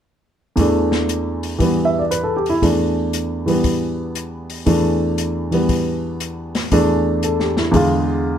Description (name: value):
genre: jazz piano trio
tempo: 117 BPM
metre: 4/4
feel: swing 67% on 8ths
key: unclear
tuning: A4 = 440 Hz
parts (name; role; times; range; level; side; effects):
- warm baby grand piano; melody; 0.6-8.4 s; E2 to E5; -17 LUFS; equal; none
- open jazz drum kit; drums; 0.6-7.9 s; hi-hat, kick drum, snare drum; -24 LUFS; left 2 dB; none
room: little or no reverb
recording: close, detailed microphones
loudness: -16 LUFS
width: side -9 dB against mid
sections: 0.6-8.4 A section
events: none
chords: 0.6 E7sus4; 7.7 E7b9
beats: | 0.57 1.09 1.60 2.11 | 2.62 3.13 3.64 4.16 | 4.67 5.18 5.69 6.20 | 6.72 7.23 7.74 8.26